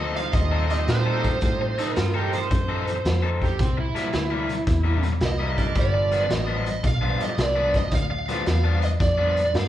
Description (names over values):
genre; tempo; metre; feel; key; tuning
electric blues shuffle; 111 BPM; 4/4; swing 67% on 8ths; unclear; A4 = 438 Hz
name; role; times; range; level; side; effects
smooth overdriven lead guitar; melody; 0.0-9.7 s; C5 to F5; -26 LUFS; right 2 dB; none
overdriven semi-hollow guitar; riff; 0.0-9.5 s; G2 to A4; -30 LUFS; left 5 dB; none
vintage muted fingered electric bass; bass; 0.0-9.7 s; G1 to Bb2; -25 LUFS; equal; none
bright tonewheel organ; accompaniment; 0.1-8.4 s; G3 to A4; -32 LUFS; right 3 dB; slow rotary speaker, overdrive
raw garage drum kit; drums; 0.2-9.7 s; hi-hat, kick drum, snare drum; -26 LUFS; equal; none
overdriven slide guitar; second line; 1.8-5.1 s; C4 to C5; -29 LUFS; right 2 dB; none
room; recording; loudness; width
moderate large studio reverb, RT60 1.4 s; band playing live in one room, cassette tape; -20 LUFS; side -12 dB against mid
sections
0.0-9.7 A section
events
none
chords
0.0 F7; 3.6 C7; 5.8 G7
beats
0.34 0.88 | 1.42 1.96 2.50 3.05 | 3.59 4.13 4.67 5.21 | 5.75 6.30 6.84 7.38 | 7.92 8.46 9.00 9.54